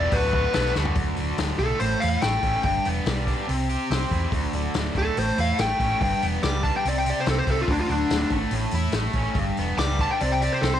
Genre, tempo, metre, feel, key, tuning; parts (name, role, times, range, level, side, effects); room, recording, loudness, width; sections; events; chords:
classic rock; 143 BPM; 4/4; straight; A4 = 440 Hz
fuzz lead guitar; melody; 0.0-10.8 s; D4 to D6; -25 LUFS; left 1 dB; distortion
distorted electric guitar; riff; 0.0-10.8 s; D2 to G4; -27 LUFS; equal; overdrive
fingered electric bass; bass; 0.0-10.8 s; D1 to E2; -27 LUFS; right 1 dB
vintage drum kit; drums; 0.1-10.7 s; hi-hat, kick drum, snare drum, toms; -29 LUFS; left 2 dB
light reverb, small room ambience; 1960s-style stereo; -21 LUFS; side -10 dB against mid
1.0-10.8 A section
drum fill 0.8; lead electric guitar solo 1.0-10.8
0.1 D6; 1.0 D5; 1.8 A; 2.6 G; 3.5 C; 4.3 D5; 5.2 A; 6.0 G; 6.9 C; 7.7 D5; 8.5 A; 9.4 G; 10.2 C5